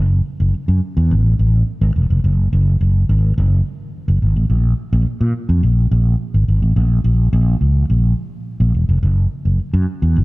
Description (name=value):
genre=funk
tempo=106 BPM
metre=4/4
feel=straight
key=unclear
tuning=A4 = 439 Hz
part: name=fretless electric bass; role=solo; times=0.0-10.2 s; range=Fb1 to Bb2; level=-14 LUFS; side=equal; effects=slapback echo
room=light reverb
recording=dark, warm production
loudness=-14 LUFS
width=side -22 dB against mid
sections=0.0-10.2 A section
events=none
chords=none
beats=0.54 1.10 1.67 | 2.24 2.80 3.37 3.93 | 4.50 5.07 5.63 6.20 | 6.76 7.33 7.90 8.46 | 9.03 9.60 10.16